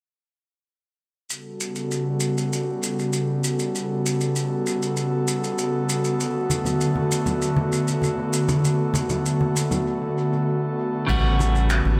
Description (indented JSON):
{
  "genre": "sunset chillout",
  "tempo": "98 BPM",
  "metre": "4/4",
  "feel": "straight",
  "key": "unclear",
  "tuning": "A4 = 440 Hz",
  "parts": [
    { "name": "airy breathy pad", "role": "sustained chords", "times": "1.5-12.0 s", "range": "C#3 to A4", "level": "-25 LUFS", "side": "equal", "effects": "chorus, vintage 12-bit sampler grit" },
    { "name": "jazz brush drum kit", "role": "drums", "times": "1.3-11.8 s", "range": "crash cymbal, finger snaps, shaker", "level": "-32 LUFS", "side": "equal", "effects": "analog delay" },
    { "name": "congas", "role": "percussion", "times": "6.5-12.0 s", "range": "none", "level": "-30 LUFS", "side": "equal", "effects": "analog delay" },
    { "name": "electric guitar at the edge of break-up", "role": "accompaniment", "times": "11.1-12.0 s", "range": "C#3 to F#4", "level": "-26 LUFS", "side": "equal", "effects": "tape echo" },
    { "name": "round analog bass", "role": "bass", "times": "11.1-12.0 s", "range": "A1", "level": "-22 LUFS", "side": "equal", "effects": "none" },
    { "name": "electronic kick drum", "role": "drums", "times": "11.1-11.2 s", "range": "none", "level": "-31 LUFS", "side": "equal", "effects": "none" }
  ],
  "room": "wet echo chamber reverb, RT60 1.6 s, studio reverb",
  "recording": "echo-heavy mix",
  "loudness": "-23 LUFS",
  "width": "mono",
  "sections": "1.3-11.1 A section",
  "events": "filter sweep on analog synth pad 1.3-11.1; break 9.9-11.1",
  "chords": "1.3 A13; 6.2 Bm7; 11.1 A13"
}